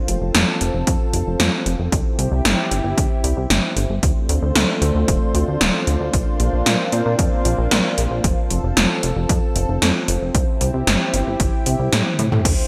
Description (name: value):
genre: synthwave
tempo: 114 BPM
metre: 4/4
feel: straight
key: unclear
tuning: A4 = 440 Hz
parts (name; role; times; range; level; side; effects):
- lush unison pad; sustained chords; 0.0-12.7 s; A3 to C5; -26 LUFS; equal; chorus, sidechain pumping
- chorused synth bass; bass; 0.1-12.5 s; D1 to Bb2; -23 LUFS; equal; sidechain pumping
- 80s electronic pad drums; drums; 0.1-12.6 s; crash cymbal, hi-hat, snare drum, toms; -22 LUFS; equal; gated reverb on snare and toms, overdrive, gated reverb
- electronic kick drum; drums; 0.9-12.6 s; none; -23 LUFS; equal; overdrive
room: light reverb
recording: bright 1980s-style digital production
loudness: -19 LUFS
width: mono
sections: 0.0-12.5 A section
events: drum fill 12.1-12.5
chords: 0.0 F; 1.9 C; 4.0 Dm7; 6.1 Bbadd9; 8.2 F; 10.3 C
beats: 0.35 0.87 1.40 | 1.93 2.45 2.98 3.50 | 4.03 4.56 5.08 5.61 | 6.14 6.66 7.19 7.71 | 8.24 8.77 9.29 9.82 | 10.35 10.87 11.40 11.93 | 12.45